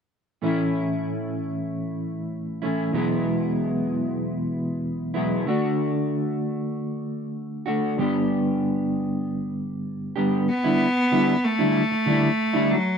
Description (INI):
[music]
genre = rock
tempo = 95 BPM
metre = 4/4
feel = straight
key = A mixolydian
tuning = A4 = 441 Hz
[part]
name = mellow electric guitar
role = riff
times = 0.4-12.7 s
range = E2 to G4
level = -23 LUFS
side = equal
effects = harmonic tremolo, double-tracked left and right
[part]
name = rich cello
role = melody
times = 10.5-13.0 s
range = F#3 to B3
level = -21 LUFS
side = equal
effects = slapback echo
[sound]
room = moderate booth ambience, RT60 0.2 s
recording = dry, close 1970s-style studio recording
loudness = -22 LUFS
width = side -6 dB against mid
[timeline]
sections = 0.4-10.5 A section; 10.5-13.0 B section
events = none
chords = 0.4 A; 2.9 Eadd9; 5.5 D; 8.0 G; 10.5 A7sus4